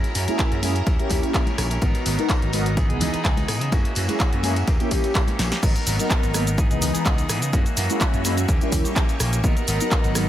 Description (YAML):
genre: filtered disco house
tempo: 126 BPM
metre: 4/4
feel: swing 53% on 16ths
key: G# minor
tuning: A4 = 441 Hz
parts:
  - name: string machine, full ensemble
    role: sustained chords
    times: 0.0-10.3 s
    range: E3 to C#6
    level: -32 LUFS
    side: equal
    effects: phaser, ensemble chorus, sidechain pumping, low-pass filter
  - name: electric guitar at the edge of break-up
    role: riff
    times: 0.0-10.3 s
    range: E3 to A#4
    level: -30 LUFS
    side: equal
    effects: sidechain pumping, low-pass filter
  - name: punchy analog drum machine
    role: drums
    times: 0.0-10.3 s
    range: crash cymbal, handclaps, hi-hat, rim click, shaker, snare drum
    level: -27 LUFS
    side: equal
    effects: sidechain pumping on hats, sidechain pumping on cymbals, sidechain pumping on perc
  - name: tambourine and congas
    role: percussion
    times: 0.0-5.6 s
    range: none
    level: -33 LUFS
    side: left 2 dB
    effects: sidechain pumping on perc, low-pass filter on perc
  - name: vintage slap bass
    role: bass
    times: 0.2-10.3 s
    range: G#1 to C#3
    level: -25 LUFS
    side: equal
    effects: sidechain pumping, low-pass filter
  - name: mellow synth brass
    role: accompaniment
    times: 0.3-10.3 s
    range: E3 to A#4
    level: -27 LUFS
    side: equal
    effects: chorus, phaser, cassette tape, sidechain pumping, low-pass filter
  - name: electronic kick drum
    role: drums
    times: 0.4-10.0 s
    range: none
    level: -21 LUFS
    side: equal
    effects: none
room: little or no reverb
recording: none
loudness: -19 LUFS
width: side -12 dB against mid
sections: 0.0-5.6 A section; 5.6-10.3 B section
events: drum fill 5.4; drop 5.6-10.3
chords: 0.0 F#7; 0.9 D#7b9; 1.8 G#m9; 2.8 C#m9; 3.7 F#7; 4.7 D#7b9 (rootless); 5.6 G#m9; 6.6 C#m9; 7.5 F#7; 8.5 D#7b9; 9.4 G#m9